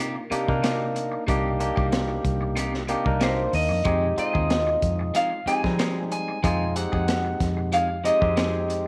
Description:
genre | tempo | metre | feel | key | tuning
straight-eighth soul blues | 93 BPM | 4/4 | straight | unclear | A4 = 440 Hz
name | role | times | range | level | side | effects
electric guitar through a small old amp | melody | 0.0-8.9 s | Bb4 to Ab5 | -28 LUFS | equal | phaser
barky tine electric piano | accompaniment | 0.0-8.9 s | G3 to Bb4 | -30 LUFS | equal | none
clean electric guitar | stabs | 0.0-8.7 s | C3 to Ab4 | -36 LUFS | equal | none
vintage muted fingered electric bass | bass | 0.3-8.9 s | C2 to F3 | -30 LUFS | equal | none
crunchy breakbeat drum kit | drums | 0.3-8.9 s | hi-hat, kick drum, snare drum | -31 LUFS | equal | none
room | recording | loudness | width
light reverb, small room ambience | none | -24 LUFS | mono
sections
0.0-8.9 A section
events
none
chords
0.0 Cm7; 3.9 Fm7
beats
0.63 | 1.28 1.92 2.57 3.21 | 3.86 4.50 5.14 5.79 | 6.43 7.08 7.72 8.37

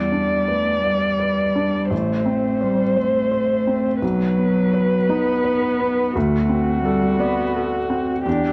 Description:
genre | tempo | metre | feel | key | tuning
neoclassical piano and strings | 57 BPM (dotted quarters) | 6/8 | rubato | unclear | A4 = 439 Hz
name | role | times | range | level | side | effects
muted violin | melody | 0.0-8.5 s | F#4 to D5 | -25 LUFS | equal | none
muted cello | second line | 0.0-8.5 s | F#3 to D4 | -24 LUFS | equal | none
felt-muted upright piano | accompaniment | 0.0-8.5 s | A1 to D5 | -26 LUFS | equal | none
room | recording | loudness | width
moderate recital hall reverb, RT60 1.4 s | dark, warm production | -20 LUFS | mono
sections
0.0-8.5 A section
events
none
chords
0.0 Em7; 1.9 Am; 4.0 B; 6.2 D7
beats
0.85 | 1.92 2.97 | 4.02 5.09 | 6.15 7.20 | 8.26

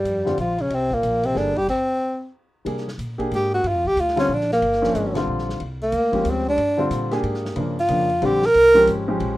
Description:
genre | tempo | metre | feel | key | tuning
modal jazz | 184 BPM | 3/4 | swing 62% on 8ths | unclear | A4 = 438 Hz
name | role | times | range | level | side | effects
mellow tenor saxophone | melody | 0.0-8.9 s | G3 to Bb4 | -18 LUFS | equal | none
mellow bass clarinet | second line | 0.0-1.7 s | G2 to G3 | -30 LUFS | left 1 dB | none
upright bass | bass | 0.0-9.4 s | G1 to C3 | -29 LUFS | equal | none
vintage drum kit | drums | 0.1-9.3 s | crash cymbal, hi-hat, kick drum, ride cymbal, snare drum | -38 LUFS | equal | none
warm baby grand piano | accompaniment | 0.2-9.4 s | Db3 to Ab4 | -24 LUFS | left 1 dB | none
room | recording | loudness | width
moderate small room reverb, RT60 0.5 s | rough home demo mix | -18 LUFS | side -16 dB against mid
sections
0.0-2.7 A section; 2.7-9.4 B section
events
stop 1.7-2.7; tenor saxophone solo 2.7-9.4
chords
0.0 C9sus4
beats
0.04 0.37 | 0.70 1.03 1.35 | 1.68 2.01 2.33 | 2.66 2.99 3.32 | 3.64 3.97 4.30 | 4.62 4.95 5.28 | 5.61 5.93 6.26 | 6.58 6.91 7.24 | 7.57 7.89 8.22 | 8.54 8.87 9.20

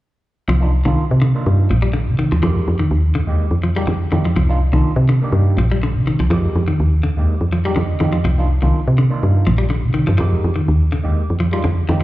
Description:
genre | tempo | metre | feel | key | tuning
afrobeat | 124 BPM | 4/4 | straight | C minor | A4 = 437 Hz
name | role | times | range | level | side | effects
clean electric guitar | arpeggios | 0.5-12.0 s | D3 to G3 | -21 LUFS | left 1 dB | none
woody FM bass | bass | 0.5-12.0 s | Bb1 to C3 | -16 LUFS | equal | none
overdriven tine electric piano | accompaniment | 0.6-12.0 s | Ab3 to Eb5 | -26 LUFS | right 4 dB | phaser, slapback echo
room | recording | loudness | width
light reverb, digital ambience | live gig heard through the venue's PA, club reverb | -14 LUFS | side -16 dB against mid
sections
0.5-12.0 A section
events
tine electric piano fill 7.5-8.2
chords
0.5 Cm11; 2.4 Fm11; 4.4 Cm11; 6.3 Fm11; 8.2 Cm11; 10.2 Fm11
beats
| 0.49 0.97 1.46 1.95 | 2.43 2.92 3.40 3.88 | 4.37 4.86 5.34 5.83 | 6.31 6.79 7.28 7.76 | 8.25 8.73 9.22 9.70 | 10.18 10.67 11.15 11.64

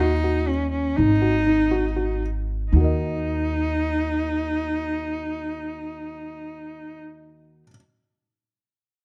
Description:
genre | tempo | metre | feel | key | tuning
contemporary instrumental, contemporary | free time | none | none | Eb minor | A4 = 440 Hz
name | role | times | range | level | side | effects
clear cello | melody | 0.0-7.0 s | Db4 to Eb4 | -28 LUFS | equal | none
felt-muted upright piano | arpeggios | 0.0-7.7 s | Eb4 to Eb5 | -28 LUFS | equal | none
upright bass | bass | 0.0-7.6 s | Ab1 to Eb2 | -27 LUFS | equal | none
room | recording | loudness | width
light reverb | close, detailed microphones | -23 LUFS | mono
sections
0.0-2.7 A section; 2.7-6.2 B section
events
slowing down 0.0-2.7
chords
0.0 Ebm; 1.0 Ab5; 2.7 Ebm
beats
free time

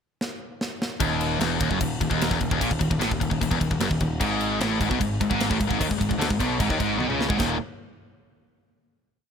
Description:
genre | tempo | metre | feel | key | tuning
heavy metal | 150 BPM | 4/4 | straight | Eb phrygian | A4 = 440 Hz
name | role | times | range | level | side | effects
tight metal drum kit | drums | 0.2-7.5 s | crash cymbal, kick drum, snare drum, toms | -27 LUFS | equal | none
sludgy distorted guitar | riff | 1.0-7.6 s | Eb2 to Eb3 | -27 LUFS | right 12 dB | overdrive
tight distorted guitar | riff | 1.0-7.6 s | Eb2 to Eb3 | -26 LUFS | left 12 dB | distortion
overdriven picked electric bass | bass | 1.0-7.6 s | Eb1 to Eb2 | -30 LUFS | equal | none
room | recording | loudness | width
little or no reverb | none | -22 LUFS | side -7 dB against mid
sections
0.0-1.0 pickup bar; 1.0-7.4 riff; 7.4-9.0 final chord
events
drum fill 0.2-1.0, 7.0-7.4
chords
0.0 N.C.; 1.0 Ebm; 4.2 Ab5; 7.4 Eb5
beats
0.20 0.60 | 1.00 1.40 1.80 2.20 | 2.60 3.00 3.40 3.80 | 4.20 4.60 5.00 5.40 | 5.80 6.20 6.59 6.99 | 7.39

